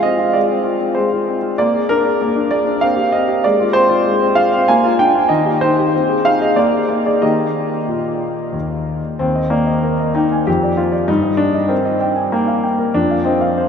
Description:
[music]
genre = classical-period piano sonatina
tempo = 97 BPM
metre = 3/4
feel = rubato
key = Eb major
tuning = A4 = 438 Hz
[part]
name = warm concert grand piano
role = solo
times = 0.0-13.7 s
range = Eb2 to Ab5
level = -14 LUFS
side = equal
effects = none
[sound]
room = wet huge ambient reverb, RT60 7.1 s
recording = in a vast, echoing space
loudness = -14 LUFS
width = side -7 dB against mid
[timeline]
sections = 0.0-9.2 A section; 9.2-13.7 B section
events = none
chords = 0.0 Fm/Ab; 1.6 Bb7; 2.8 Cm; 3.4 Fm/Ab; 4.7 Bb7; 5.3 Eb; 5.9 Ab/C; 6.6 Bb7; 7.2 Eb; 10.5 Dmadd11/F; 11.1 Eb/G; 13.0 F5

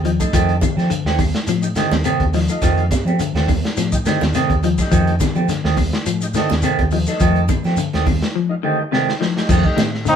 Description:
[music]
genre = afrobeat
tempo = 105 BPM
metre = 4/4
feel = swing 54% on 16ths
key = F mixolydian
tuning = A4 = 440 Hz
[part]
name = tonewheel organ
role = accompaniment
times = 0.0-9.8 s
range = A3 to A4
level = -26 LUFS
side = equal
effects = slow rotary speaker
[part]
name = semi-hollow electric guitar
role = stabs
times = 0.0-10.1 s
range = Eb3 to C4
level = -22 LUFS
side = right 6 dB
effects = none
[part]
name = fingered electric bass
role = bass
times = 0.0-10.2 s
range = Eb2 to F3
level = -20 LUFS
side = equal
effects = none
[part]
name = crunchy breakbeat drum kit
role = drums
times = 0.0-10.2 s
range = crash cymbal, hi-hat, kick drum, snare drum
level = -21 LUFS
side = equal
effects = none
[part]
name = clean electric guitar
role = arpeggios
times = 0.1-10.2 s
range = C3 to F3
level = -22 LUFS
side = left 9 dB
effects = none
[part]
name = shekere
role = percussion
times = 0.1-10.2 s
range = none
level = -29 LUFS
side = left 3 dB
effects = none
[part]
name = claves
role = percussion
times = 0.2-9.9 s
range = none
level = -36 LUFS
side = left 7 dB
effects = none
[part]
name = congas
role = percussion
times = 0.2-9.9 s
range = none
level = -27 LUFS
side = right 5 dB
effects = none
[part]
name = brilliant trombone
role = melody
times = 10.1 s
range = Eb4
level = -12 LUFS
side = left 1 dB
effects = none
[part]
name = clear trombone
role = second line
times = 10.1-10.2 s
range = C4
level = -20 LUFS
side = right 5 dB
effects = none
[sound]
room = moderate studio reverb, RT60 0.6 s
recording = band playing live in one room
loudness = -15 LUFS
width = side -8 dB against mid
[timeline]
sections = 0.0-9.5 A section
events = drum fill 0.0-0.3, 8.9-9.5; break 8.3-9.5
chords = 0.0 F7

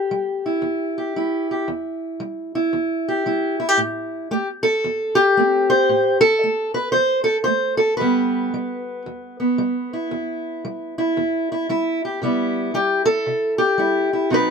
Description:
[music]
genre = acoustic country blues, solo or duo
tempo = 114 BPM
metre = 4/4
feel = swing 64% on 8ths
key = E minor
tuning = A4 = 440 Hz
[part]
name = fingerpicked steel-string acoustic guitar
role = solo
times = 0.0-14.5 s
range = E2 to C5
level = -18 LUFS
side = equal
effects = none
[sound]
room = light reverb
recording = close, detailed microphones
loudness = -18 LUFS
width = side -6 dB against mid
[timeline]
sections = 0.0-14.5 A section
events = none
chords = 0.0 Em; 3.8 Am; 8.0 Em; 12.2 Cmaj7

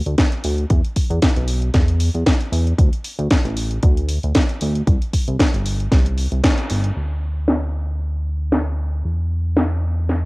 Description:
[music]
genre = nu-disco, nu disco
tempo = 115 BPM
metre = 4/4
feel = swing 55% on 16ths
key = unclear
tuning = A4 = 442 Hz
[part]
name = chorused synth bass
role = bass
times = 0.1-10.3 s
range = G1 to E2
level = -19 LUFS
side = equal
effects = none
[part]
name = house drum kit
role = drums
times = 0.1-10.2 s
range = crash cymbal, hi-hat, snare drum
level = -21 LUFS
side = equal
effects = low-pass filter on hats, small room ambience, cassette tape, low-pass filter on snare, low-pass filter on cymbals
[part]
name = electronic kick drum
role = drums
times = 0.2-6.6 s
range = none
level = -16 LUFS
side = equal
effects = small room ambience, cassette tape
[sound]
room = light reverb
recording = home recording on cassette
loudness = -16 LUFS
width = side -23 dB against mid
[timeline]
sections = 0.0-7.0 A section; 7.0-10.3 B section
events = band accent 6.4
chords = none

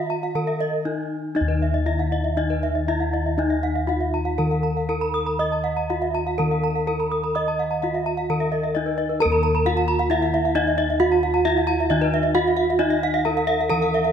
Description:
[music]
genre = Balinese gamelan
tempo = 119-133 BPM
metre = 4/4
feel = straight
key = Eb pelog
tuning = A4 = 440 Hz
[part]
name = gamelan-type bronze metallophone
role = melody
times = 0.0-14.1 s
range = Eb4 to Eb5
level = -24 LUFS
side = right 1 dB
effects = none
[part]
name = gamelan-type bronze metallophone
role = arpeggios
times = 0.0-14.1 s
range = Cb5-40c to Cb6-40c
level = -28 LUFS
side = right 6 dB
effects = none
[part]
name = gamelan-type bossed gongs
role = bass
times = 0.0-14.1 s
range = Eb2 to Eb5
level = -24 LUFS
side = left 1 dB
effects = none
[part]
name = gamelan-type bronze metallophone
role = arpeggios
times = 0.1-14.1 s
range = Cb5-40c to Eb6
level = -26 LUFS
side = left 5 dB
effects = none
[sound]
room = moderate scoring stage reverb, RT60 1.5 s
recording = none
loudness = -20 LUFS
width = side -8 dB against mid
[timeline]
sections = 0.0-9.2 A section; 9.2-14.1 B section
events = none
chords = none

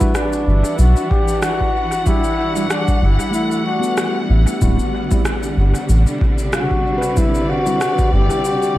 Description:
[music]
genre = ambient dub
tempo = 94 BPM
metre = 4/4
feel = swing 55% on 16ths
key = E minor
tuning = A4 = 440 Hz
[part]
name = warm trombone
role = melody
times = 0.0-8.8 s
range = D4 to G4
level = -21 LUFS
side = left 2 dB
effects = tape echo
[part]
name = dark studio string section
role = sustained chords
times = 0.0-8.8 s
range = C3 to F#5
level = -23 LUFS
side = equal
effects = none
[part]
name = handpan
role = arpeggios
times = 0.0-8.8 s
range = G3 to B4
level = -27 LUFS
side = left 1 dB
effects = tape echo
[part]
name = bell-like tine electric piano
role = stabs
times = 0.0-7.8 s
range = G3 to F#4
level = -27 LUFS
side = right 2 dB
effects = medium stereo tremolo, vintage 12-bit sampler grit, dub echo
[part]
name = electronic kick drum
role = drums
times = 0.0-8.1 s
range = none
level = -19 LUFS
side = equal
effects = overdrive
[part]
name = electronic shaker and rim click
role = drums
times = 0.0-8.7 s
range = none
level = -27 LUFS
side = equal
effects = overdrive, dub echo
[part]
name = round analog bass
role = bass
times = 0.5-8.3 s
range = D1 to B1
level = -13 LUFS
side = equal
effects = tube saturation
[sound]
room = light reverb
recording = vinyl crackle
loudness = -14 LUFS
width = side -15 dB against mid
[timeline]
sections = 0.0-8.8 A section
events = none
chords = 0.0 Em9; 4.6 D7sus4

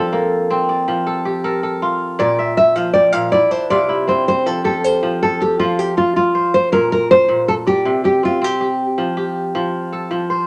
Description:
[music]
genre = west african traditional, West African string and xylophone music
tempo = 106 BPM (dotted quarters)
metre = 12/8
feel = straight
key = F major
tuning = A4 = 439 Hz
[part]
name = nylon-string guitar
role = melody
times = 0.0-8.9 s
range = F4 to F5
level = -17 LUFS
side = equal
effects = none
[part]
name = kora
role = arpeggios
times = 0.0-10.5 s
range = Bb2 to G5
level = -21 LUFS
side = equal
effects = none
[sound]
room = moderate studio reverb, RT60 0.9 s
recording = none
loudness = -17 LUFS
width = mono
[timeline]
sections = 0.0-4.5 A section; 4.5-10.5 B section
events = nylon-string guitar solo 0.0-4.5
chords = 0.0 F; 2.2 Bb; 3.3 C; 4.5 F; 6.7 Bb; 7.9 C5; 9.0 F

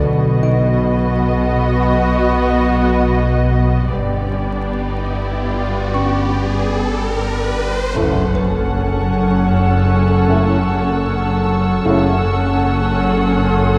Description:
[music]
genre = cinematic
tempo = 77 BPM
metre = 5/4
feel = straight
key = F# phrygian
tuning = A4 = 440 Hz
[part]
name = muted symphonic violin section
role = melody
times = 0.0-13.8 s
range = D5 to F#5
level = -27 LUFS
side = equal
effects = none
[part]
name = muted symphonic violin section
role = second line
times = 0.0-13.8 s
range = F#4 to A4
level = -27 LUFS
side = equal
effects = none
[part]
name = muted symphonic viola section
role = accompaniment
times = 0.0-13.8 s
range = B3 to C#4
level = -26 LUFS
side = equal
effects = none
[part]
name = concert harp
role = riff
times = 0.0-13.8 s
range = F#2 to G3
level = -27 LUFS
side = equal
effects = none
[part]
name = muted symphonic cello section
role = bass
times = 0.0-13.8 s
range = F#2 to B2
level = -24 LUFS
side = equal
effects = none
[part]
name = muted symphonic double bass section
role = bass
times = 0.0-13.8 s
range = F#1 to B1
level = -23 LUFS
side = equal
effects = none
[part]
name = sub bass with octave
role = drone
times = 0.0-13.8 s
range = F#1 to B1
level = -26 LUFS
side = equal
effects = none
[part]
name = riser and impact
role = sound effects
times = 3.9-11.8 s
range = none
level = -28 LUFS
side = equal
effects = none
[part]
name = music box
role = texture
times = 0.4-10.6 s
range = C#4 to C#6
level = -28 LUFS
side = equal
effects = none
[part]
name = bright trombone section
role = sustained chords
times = 7.9-12.1 s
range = C#3 to A3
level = -26 LUFS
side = equal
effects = none
[part]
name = mellow French horn section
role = sustained chords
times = 7.9-12.1 s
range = C#4 to E4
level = -26 LUFS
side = equal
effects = none
[part]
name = muted symphonic violin section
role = texture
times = 8.0-13.8 s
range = A5 to E6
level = -29 LUFS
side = equal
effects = none
[sound]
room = moderate scoring stage reverb, RT60 1.8 s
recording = vinyl crackle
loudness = -16 LUFS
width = mono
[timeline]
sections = 0.0-8.0 A section; 8.0-13.8 B section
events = riser 3.9-8.0; impact 8.0-11.8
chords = 0.0 B; 3.9 G; 8.0 F#m7

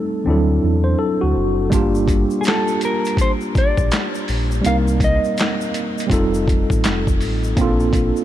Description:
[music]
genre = lo-fi hip hop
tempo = 82 BPM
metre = 4/4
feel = swing 63% on 16ths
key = unclear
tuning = A4 = 442 Hz
[part]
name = mellow tine electric piano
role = accompaniment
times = 0.0-8.2 s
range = F3 to Bb4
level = -20 LUFS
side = right 2 dB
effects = medium stereo tremolo, cassette tape
[part]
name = sub bass with octave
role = bass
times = 0.3-8.1 s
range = F1 to E2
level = -20 LUFS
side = equal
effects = none
[part]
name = tine electric piano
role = second line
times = 0.8-1.7 s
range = F#4 to C5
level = -26 LUFS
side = left 3 dB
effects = slow stereo tremolo, ping-pong delay
[part]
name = boom bap sampler-style drum kit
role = drums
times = 1.7-8.2 s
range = handclaps, hi-hat, kick drum, snare drum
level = -20 LUFS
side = equal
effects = overdrive
[part]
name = egg shaker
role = percussion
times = 1.7-8.2 s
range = none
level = -40 LUFS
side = left 8 dB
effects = none
[part]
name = mellow electric guitar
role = melody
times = 2.4-7.2 s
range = G#4 to F5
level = -24 LUFS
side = equal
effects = ping-pong delay
[sound]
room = light reverb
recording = none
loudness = -16 LUFS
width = side -12 dB against mid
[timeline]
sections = 0.0-8.2 A section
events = none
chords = 0.3 D7; 1.7 Gm7; 4.6 Cm7; 6.1 F9; 7.6 Bbmaj9

